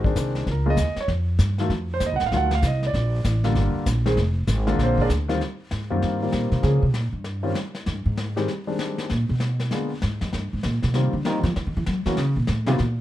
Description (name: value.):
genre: jazz piano trio.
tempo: 194 BPM.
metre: 4/4.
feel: swing 62% on 8ths.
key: Bb major, Eb major from 5.4 s.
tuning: A4 = 440 Hz.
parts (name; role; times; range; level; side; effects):
warm concert grand piano; melody; 0.0-12.8 s; Db3 to Gb5; -25 LUFS; equal; none.
upright bass; bass; 0.0-13.0 s; F1 to Gb3; -22 LUFS; equal; none.
vintage brush drum kit; drums; 0.0-13.0 s; brushed snare drum, hi-hat, kick drum, snare drum; -30 LUFS; left 2 dB; none.
room: light reverb.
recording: dark, warm production.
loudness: -21 LUFS.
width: side -13 dB against mid.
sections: 0.0-5.4 A section; 5.4-13.0 A section.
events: grand piano solo 0.0-5.4; upright bass solo 5.4-13.0.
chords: 0.5 Db6; 1.7 F7(no3); 2.9 Bb6; 4.2 Fm; 4.8 Bb7; 5.4 Eb69; 6.6 Bbm7; 7.3 N.C.; 7.9 Abmaj7; 9.1 Bb7(no3); 10.3 Eb69; 11.6 Dbmadd9 (rootless); 12.2 Gb (rootless).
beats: 0.16 | 0.47 0.78 1.09 1.40 | 1.70 2.01 2.32 2.63 | 2.94 3.25 3.56 3.86 | 4.17 4.48 4.79 5.10 | 5.41 5.71 6.02 6.33 | 6.64 6.95 7.26 7.57 | 7.87 8.18 8.49 8.80 | 9.11 9.41 9.72 10.03 | 10.34 10.64 10.95 11.26 | 11.56 11.87 12.18 12.49 | 12.79.